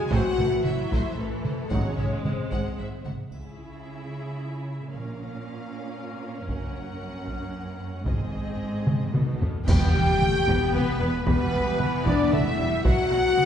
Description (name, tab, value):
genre	cinematic, epic orchestral film score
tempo	113 BPM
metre	3/4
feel	straight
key	C# dorian from 3.3 s, E minor from 9.7 s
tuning	A4 = 440 Hz
part	warm symphonic violin section	second line	0.0-13.5 s	G#4 to G#5	-36 LUFS	right 1 dB	none
part	warm symphonic viola section	accompaniment	0.0-13.5 s	E3 to E4	-35 LUFS	right 2 dB	none
part	dark French horn section	sustained chords	0.0-13.5 s	G#3 to G#4	-29 LUFS	left 4 dB	none
part	clear symphonic violin section	melody	0.1-13.5 s	A4 to G5	-39 LUFS	left 2 dB	none
part	clear trombone section	sustained chords	0.1-1.9, 9.7-13.5 s	D3 to D#4	-37 LUFS	right 4 dB	none
part	rich symphonic double bass section	bass	0.1-13.2 s	E1 to C#2	-32 LUFS	right 2 dB	none
part	warm symphonic cello section	bass	0.1-13.2 s	E2 to C#3	-32 LUFS	right 2 dB	none
part	taiko ensemble	drums	0.1-13.5 s	none	-28 LUFS	equal	none
part	timpani	percussion	1.7-2.5, 8.1-10.4 s	E2 to G#2	-31 LUFS	equal	none
part	triangle, cymbal swell, clash cymbals and concert bass drum	percussion	3.3-10.7 s	none	-31 LUFS	equal	none
part	flute section	second line	9.7-13.5 s	B4 to G5	-34 LUFS	left 1 dB	none
part	clear trumpet section	stabs	9.7-13.5 s	B4 to G5	-30 LUFS	equal	none
room	wet scoring stage reverb, RT60 1.5 s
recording	heard from further back in the room, nothing above 11.0 kHz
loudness	-23 LUFS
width	side -9 dB against mid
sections	0.0-3.3 A section; 3.3-9.7 B section; 9.7-13.5 C section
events	drum fill 8.9-9.7; band accent 9.7-10.2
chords	0.1 Am; 1.7 G#7; 3.3 C#m; 4.9 A#m; 6.5 F#; 8.1 G#; 9.1 B7; 9.7 Em; 12.8 Bm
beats	| 0.12 0.65 1.18 | 1.71 2.25 2.79 | 3.32 3.85 4.38 | 4.91 5.44 5.97 | 6.49 7.01 7.54 | 8.06 8.60 9.13 | 9.68 10.21 10.74 | 11.26 11.79 12.32 | 12.85 13.37